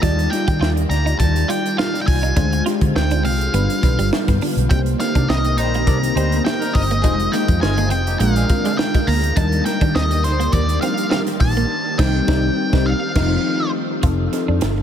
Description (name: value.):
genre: polished 1980s jazz-funk pop.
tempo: 103 BPM.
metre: 4/4.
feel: swing 54% on 16ths.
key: unclear.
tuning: A4 = 440 Hz.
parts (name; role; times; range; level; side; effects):
octave-fuzz lead guitar; melody; 0.0-13.7 s; C5 to Bb5; -24 LUFS; equal; distortion, ping-pong delay.
FM electric piano; accompaniment; 0.0-14.8 s; F3 to Eb5; -23 LUFS; left 2 dB; wide subtle chorus.
soft string machine; sustained chords; 0.0-14.0 s; D3 to D5; -26 LUFS; equal; phaser, ensemble chorus.
clean electric guitar; riff; 0.0-14.8 s; G3 to G4; -29 LUFS; right 5 dB; none.
vintage muted fingered electric bass; bass; 0.0-14.8 s; F1 to Eb3; -19 LUFS; equal; none.
crisp fusion drum kit; drums; 0.0-14.8 s; crash cymbal, hi-hat, kick drum, snare drum; -22 LUFS; right 1 dB; none.
warm horn section; second line; 5.2-8.8 s; C3 to D5; -32 LUFS; left 3 dB; none.
room: moderate huge ambient reverb, RT60 8.2 s.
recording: dreamy mix soaked in reverb.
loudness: -16 LUFS.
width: side -9 dB against mid.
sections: 0.0-14.0 A section.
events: band accent 11.7-14.0.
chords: 0.0 Ebmaj9; 2.4 Dm7b5; 3.5 G7; 4.7 Cm7; 7.0 Fm7; 8.2 Bb7; 9.4 Ebmaj7; 11.7 Cm7; 12.9 F7.